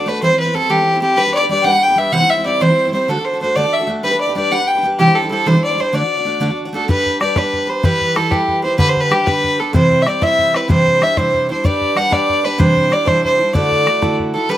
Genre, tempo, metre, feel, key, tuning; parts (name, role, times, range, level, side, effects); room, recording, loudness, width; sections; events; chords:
celtic folk, Celtic jig; 126 BPM (dotted quarters); 6/8; straight; A4 = 439 Hz
rich fiddle; melody; 0.0-14.6 s; G4 to G5; -14 LUFS; equal
picked steel-string acoustic guitar; accompaniment; 0.0-14.6 s; C3 to D5; -19 LUFS; right 2 dB
bodhran; percussion; 6.9-14.2 s; -19 LUFS; left 1 dB
little or no reverb; recorded outdoors, with no room sound; -13 LUFS; side -12 dB against mid
0.0-6.9 A section; 6.9-14.5 B section
0.2 C/E; 1.2 G; 2.1 C; 3.1 D; 4.0 G; 5.0 Cadd9; 5.9 D; 6.9 G; 7.8 Em; 8.8 G/D; 9.7 C; 10.7 Cadd9; 11.6 G; 12.6 Cadd9; 13.5 Dadd9